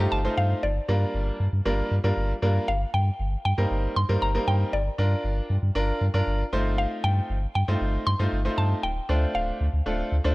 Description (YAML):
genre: dance-pop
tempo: 117 BPM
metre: 4/4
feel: straight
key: G minor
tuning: A4 = 439 Hz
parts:
  - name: mallet-like synth pluck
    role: melody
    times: 0.0-10.1 s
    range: D5 to C6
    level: -30 LUFS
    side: left 1 dB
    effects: chorus, dub echo
  - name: bright concert grand piano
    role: accompaniment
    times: 0.0-10.3 s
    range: G3 to C5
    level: -28 LUFS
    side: equal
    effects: none
  - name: warm sub bass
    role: bass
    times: 0.0-10.3 s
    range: D1 to G2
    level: -24 LUFS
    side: equal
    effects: none
room: small room reverb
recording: worn, warbling old tape, cassette tape, warbly pitch drift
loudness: -22 LUFS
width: side -21 dB against mid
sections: 0.0-10.3 A section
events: none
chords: 0.0 F7/G; 0.6 Gm7; 2.7 Cm7/G; 4.7 Bb/G; 6.5 F7/G; 8.8 Dm7